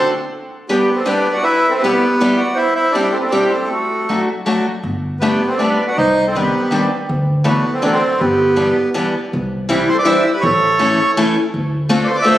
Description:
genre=musette waltz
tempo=160 BPM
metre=3/4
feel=straight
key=G major, C major from 9.3 s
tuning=A4 = 440 Hz
part: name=bandoneon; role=melody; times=0.0-12.4 s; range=A3 to E5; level=-17 LUFS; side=equal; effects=none
part: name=mellow clarinet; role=second line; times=0.0-12.4 s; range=F#4 to D5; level=-20 LUFS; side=right 2 dB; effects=none
part: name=picked steel-string acoustic guitar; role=accompaniment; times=0.0-12.4 s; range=Eb3 to A4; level=-18 LUFS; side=left 1 dB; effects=none
part: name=upright bass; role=bass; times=4.8-12.0 s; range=G1 to D2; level=-21 LUFS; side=equal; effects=none
room=wet scoring stage reverb, RT60 1.7 s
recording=recorded on a phone in the room, studio ambience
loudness=-13 LUFS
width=side -13 dB against mid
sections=0.3-9.3 A section; 9.3-12.4 B section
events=none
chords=0.3 G; 1.5 Em; 2.6 C; 3.7 D; 4.8 Gadd9; 6.0 Cmadd9; 7.1 Dadd9; 8.2 G6; 9.3 Cadd9; 10.4 A; 11.5 Dm7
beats=| 0.32 0.70 1.08 | 1.46 1.84 2.21 | 2.58 2.96 3.33 | 3.70 4.08 4.46 | 4.84 5.22 5.60 | 5.97 6.35 6.72 | 7.09 7.46 7.83 | 8.20 8.57 8.94 | 9.32 9.69 10.06 | 10.43 10.80 11.17 | 11.53 11.89 12.26

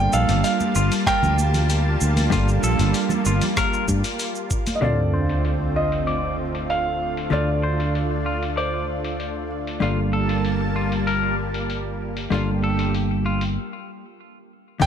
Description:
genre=sunset chillout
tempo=96 BPM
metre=4/4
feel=straight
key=G minor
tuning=A4 = 440 Hz
part: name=dark concert grand piano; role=melody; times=0.0-9.5, 14.8-14.9 s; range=C5 to G5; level=-26 LUFS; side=right 2 dB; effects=ping-pong delay
part: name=vintage hollow-body jazz guitar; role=accompaniment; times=0.0-14.9 s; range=D3 to F5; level=-25 LUFS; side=moving between left 7 dB and right 4 dB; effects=auto-pan, ping-pong delay
part: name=lush unison pad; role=sustained chords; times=0.0-14.9 s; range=D3 to A5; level=-28 LUFS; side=equal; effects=chorus
part: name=fretless electric bass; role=bass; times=0.0-14.9 s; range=G1 to G2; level=-24 LUFS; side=equal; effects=none
part: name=clean electric guitar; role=arpeggios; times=0.1-13.4 s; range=F4 to D5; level=-30 LUFS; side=left 3 dB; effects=low-pass filter, ping-pong delay
part: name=dusty soul sampler-style drum kit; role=drums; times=0.1-14.9 s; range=cabasa, hi-hat, rim click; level=-31 LUFS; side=left 1 dB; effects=low-pass filter on hats, low-pass filter on perc, low-pass filter on snare, low-pass filter on room
part: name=congas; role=percussion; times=0.6-4.8 s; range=none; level=-31 LUFS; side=right 2 dB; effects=none
part: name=electronic kick drum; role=drums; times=1.1-4.6, 14.8-14.9 s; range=none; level=-26 LUFS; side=equal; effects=none
part: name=sub drop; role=sound effects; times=4.8-7.3 s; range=none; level=-28 LUFS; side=equal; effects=none
room=light reverb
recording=none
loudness=-20 LUFS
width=side -8 dB against mid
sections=0.0-4.8 A section; 4.8-14.8 B section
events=impact 4.8-7.3; filter sweep on clean electric guitar 4.8-14.8; break 13.6-14.8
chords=0.0 Gm9; 4.8 Dm7; 9.8 Gm9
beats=0.44 1.07 1.69 | 2.32 2.94 3.57 4.19 | 4.82 5.44 6.07 6.69 | 7.32 7.94 8.57 9.19 | 9.82 10.44 11.07 11.69 | 12.32 12.94 13.57 14.19 | 14.82

